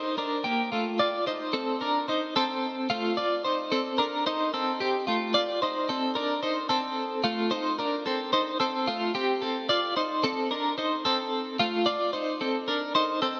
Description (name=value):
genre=indie pop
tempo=110 BPM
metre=4/4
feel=straight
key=unclear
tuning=A4 = 440 Hz
part: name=twelve-string electric guitar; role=solo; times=0.0-13.4 s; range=A3 to D5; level=-28 LUFS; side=equal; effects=tremolo
room=wet lush hall reverb, RT60 2.8 s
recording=rough home demo mix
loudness=-28 LUFS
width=mono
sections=0.0-9.7 A section; 9.7-13.4 B section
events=none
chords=0.0 Gm7 (rootless)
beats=0.45 | 0.99 1.54 2.08 2.63 | 3.17 3.72 4.26 4.80 | 5.35 5.89 6.43 6.98 | 7.52 8.06 8.61 9.15 | 9.69 10.24 10.78 11.32 | 11.87 12.41 12.95